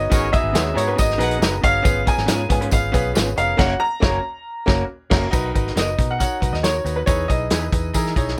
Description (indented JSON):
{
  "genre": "uptempo 1960s-style soul",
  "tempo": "138 BPM",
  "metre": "4/4",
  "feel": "straight",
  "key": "B major",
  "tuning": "A4 = 439 Hz",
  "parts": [
    { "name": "clear baby grand piano", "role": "melody", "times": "0.0-8.4 s", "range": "B4 to A#5", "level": "-25 LUFS", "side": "equal", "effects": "none" },
    { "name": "clear upright piano", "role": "accompaniment", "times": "0.0-8.4 s", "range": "A#3 to C#5", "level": "-27 LUFS", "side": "equal", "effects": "none" },
    { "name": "vintage muted fingered electric bass", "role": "bass", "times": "0.0-8.3 s", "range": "E#1 to E3", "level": "-28 LUFS", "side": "equal", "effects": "none" },
    { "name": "warm horn section", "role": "second line", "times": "0.1-1.4 s", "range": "B3 to F#5", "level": "-28 LUFS", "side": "equal", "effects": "none" },
    { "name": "warm soul drum kit", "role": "drums", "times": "0.1-8.3 s", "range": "crash cymbal, hi-hat, kick drum, snare drum", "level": "-23 LUFS", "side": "equal", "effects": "none" },
    { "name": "tambourine", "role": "percussion", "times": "0.1-8.3 s", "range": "none", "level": "-38 LUFS", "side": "equal", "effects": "none" },
    { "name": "electric guitar through a small old amp", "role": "stabs", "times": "0.5-7.6 s", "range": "G#3 to B4", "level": "-30 LUFS", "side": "equal", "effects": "subtle chorus" }
  ],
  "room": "little or no reverb",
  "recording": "none",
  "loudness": "-20 LUFS",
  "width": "mono",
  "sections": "0.0-5.3 A section; 5.3-8.4 B section",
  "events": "band accent 3.6-5.3",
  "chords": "0.1 G#m7; 1.9 C#7/G#; 3.6 F#; 5.3 Bmaj7; 7.1 Emaj7"
}